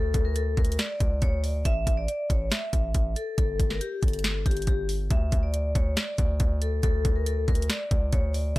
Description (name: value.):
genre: hip hop, trap.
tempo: 139 BPM.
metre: 4/4.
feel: half-time.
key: unclear.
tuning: A4 = 440 Hz.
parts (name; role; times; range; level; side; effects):
vibraphone with medium mallets; melody; 0.0-8.6 s; G4 to E5; -32 LUFS; left 2 dB; low-pass filter.
distorted 808-style bass; bass; 0.0-8.6 s; G1 to D2; -27 LUFS; equal; distortion.
trap drum kit; drums; 0.1-8.6 s; hi-hat, kick drum, snare drum; -25 LUFS; equal; none.
room: little or no reverb.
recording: none.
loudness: -23 LUFS.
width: side -19 dB against mid.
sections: 0.0-8.6 A section.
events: none.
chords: 0.0 Aadd11; 1.7 A5; 3.4 Gsus2; 5.1 N.C..